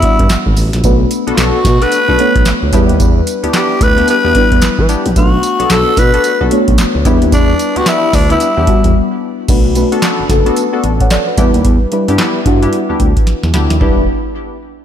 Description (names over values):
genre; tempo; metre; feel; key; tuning
R&B, new jack swing; 111 BPM; 4/4; swing 61% on 16ths; E dorian; A4 = 437 Hz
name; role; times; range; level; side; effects
growling tenor saxophone; melody; 0.0-9.1 s; D4 to B4; -15 LUFS; left 1 dB; digital delay
mellow FM electric piano; accompaniment; 0.0-14.1 s; G3 to F#5; -16 LUFS; left 1 dB; chorus, phaser, slapback echo
booming analog drum machine; drums; 0.0-14.0 s; crash cymbal, handclaps, hi-hat, kick drum, snare drum, tambourine, toms; -14 LUFS; equal; none
smooth gliding synth bass; bass; 0.2-14.1 s; E1 to E3; -15 LUFS; equal; none
funky polysynth comp; stabs; 1.3-14.0 s; B3 to A4; -19 LUFS; left 2 dB; chorus, slapback echo, digital delay
room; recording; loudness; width
moderate lush hall reverb, RT60 1.7 s, digital ambience; big arena sound; -9 LUFS; side -9 dB against mid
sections
0.0-9.5 A section; 9.5-13.8 B section; 13.8-14.8 C section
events
break 8.9-9.5; drum fill 13.3-13.8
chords
0.0 Em7; 0.8 Bm7; 2.7 Em7; 5.2 Bm7; 7.1 Em7; 9.5 Bm7; 11.4 Em7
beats
0.29 | 0.84 1.38 1.92 2.46 | 3.00 3.54 4.08 4.62 | 5.16 5.70 6.24 6.78 | 7.32 7.86 8.40 8.94 | 9.48 10.03 10.57 11.11 | 11.65 12.19 12.73 13.27 | 13.81